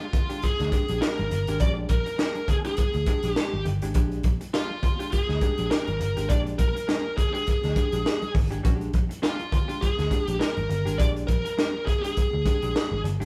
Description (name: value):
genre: funk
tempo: 102 BPM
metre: 4/4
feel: swing 56% on 16ths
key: Bb mixolydian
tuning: A4 = 440 Hz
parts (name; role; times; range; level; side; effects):
- high-gain lead guitar; melody; 0.0-13.0 s; F4 to D5; -31 LUFS; equal; distortion
- vintage hollow-body jazz guitar; accompaniment; 0.0-13.2 s; Ab3 to G4; -37 LUFS; equal; none
- crisp fusion drum kit; drums; 0.0-13.2 s; hi-hat, kick drum, snare drum; -28 LUFS; equal; none
- congas; percussion; 0.0-13.2 s; none; -40 LUFS; equal; none
- vintage muted picked electric bass; bass; 0.6-13.2 s; G1 to D2; -31 LUFS; equal; none
room: moderate stone room reverb, RT60 1.1 s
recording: band playing live in one room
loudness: -25 LUFS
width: mono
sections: 0.0-13.2 A section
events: none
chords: 0.0 Bb6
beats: 0.43 1.02 | 1.60 2.19 2.78 3.37 | 3.95 4.54 5.13 5.71 | 6.30 6.89 7.47 8.06 | 8.65 9.23 9.82 10.41 | 10.99 11.58 12.17 12.75